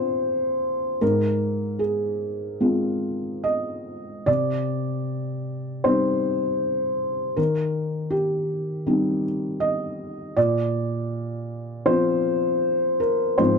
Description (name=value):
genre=neoclassical minimalist piano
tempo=68-82 BPM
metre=4/4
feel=rubato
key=unclear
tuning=A4 = 439 Hz
part: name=felt-muted upright piano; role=solo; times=0.0-13.6 s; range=Ab2 to Eb5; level=-22 LUFS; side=equal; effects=none
room=small room reverb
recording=dry, close 1970s-style studio recording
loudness=-22 LUFS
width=side -5 dB against mid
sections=0.0-13.6 A section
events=none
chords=0.0 Bbadd9; 1.0 Fm/Ab; 4.3 Cm; 7.4 Eb6; 10.4 Bbadd9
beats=0.24 | 1.01 1.79 2.59 3.45 | 4.27 5.07 5.85 6.62 | 7.38 8.12 8.86 9.62 | 10.37 11.12 11.87 12.63 | 13.39